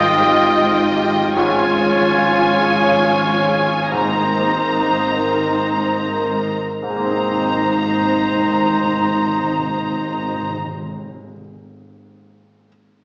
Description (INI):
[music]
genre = cinematic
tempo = 58-78 BPM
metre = 3/4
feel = rubato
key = Ab major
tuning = A4 = 440 Hz
[part]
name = rich symphonic violin section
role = melody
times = 0.0-10.5 s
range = G5 to Bb5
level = -24 LUFS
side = equal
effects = none
[part]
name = hollow small flute group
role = second line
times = 0.0-10.5 s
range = G5 to Bb5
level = -23 LUFS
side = equal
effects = none
[part]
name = warm clarinet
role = second line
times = 0.0-10.5 s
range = Eb4 to F4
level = -22 LUFS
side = equal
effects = none
[part]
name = warm oboe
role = second line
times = 0.0-10.5 s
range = C5 to Eb5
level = -23 LUFS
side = equal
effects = none
[part]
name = warm symphonic violin section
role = second line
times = 0.0-10.5 s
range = C5 to Eb5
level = -26 LUFS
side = equal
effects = none
[part]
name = clear baby grand piano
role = accompaniment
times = 0.0-12.7 s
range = Ab2 to Eb5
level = -24 LUFS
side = equal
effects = none
[part]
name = warm symphonic viola section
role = accompaniment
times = 0.0-10.5 s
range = Eb4 to F4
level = -25 LUFS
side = equal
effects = none
[part]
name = mellow French horn section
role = sustained chords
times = 0.0-10.5 s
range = F3 to Eb4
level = -25 LUFS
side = equal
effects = none
[part]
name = concert harp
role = arpeggios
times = 0.0-11.4 s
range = Ab2 to F5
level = -28 LUFS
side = equal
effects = none
[part]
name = dark symphonic double bass section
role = bass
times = 0.0-10.5 s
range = Ab1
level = -26 LUFS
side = equal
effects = none
[part]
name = warm symphonic cello section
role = bass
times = 0.0-10.5 s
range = Ab2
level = -28 LUFS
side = equal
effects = none
[part]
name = timpani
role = percussion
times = 3.9-11.2 s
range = Ab2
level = -30 LUFS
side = equal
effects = none
[sound]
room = wet scoring stage reverb, RT60 1.5 s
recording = small speaker sound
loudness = -14 LUFS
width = side -34 dB against mid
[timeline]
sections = 0.0-6.8 A section; 6.8-9.8 B section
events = slowing down 0.2-6.8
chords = 0.0 Ebadd9/Ab; 1.3 Db/Ab; 3.9 Abadd9